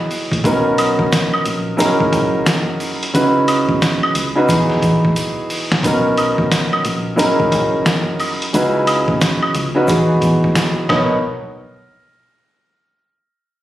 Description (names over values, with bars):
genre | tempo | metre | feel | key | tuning
hip hop, boom-bap hip-hop | 89 BPM | 4/4 | swing 62% on 16ths | B major | A4 = 440 Hz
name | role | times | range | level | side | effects
warm concert grand piano | accompaniment | 0.0-11.2 s | B2 to C#5 | -16 LUFS | equal | high-pass filter, low-pass filter
trip hop sampler-style drum kit | drums | 0.1-11.1 s | hi-hat, kick drum, snare drum | -19 LUFS | equal | none
egg shaker and woodblock | percussion | 0.1-11.2 s | none | -22 LUFS | equal | none
deep dub fingered electric bass | bass | 0.3-11.2 s | F#1 to E2 | -21 LUFS | equal | none
room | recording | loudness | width
light reverb | recorded on a phone in the room, studio reverb, compression | -14 LUFS | side -14 dB against mid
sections
0.0-5.8 A section; 5.8-11.2 B section; 11.2-13.6 C section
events
drum fill 5.2-5.8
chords
0.4 Bmaj7; 1.8 F#13; 3.1 C#m11; 4.5 Emaj9; 5.8 Bmaj7; 7.2 F#13; 8.5 C#m11; 9.9 Emaj9; 10.9 Bmaj7; 11.2 N.C.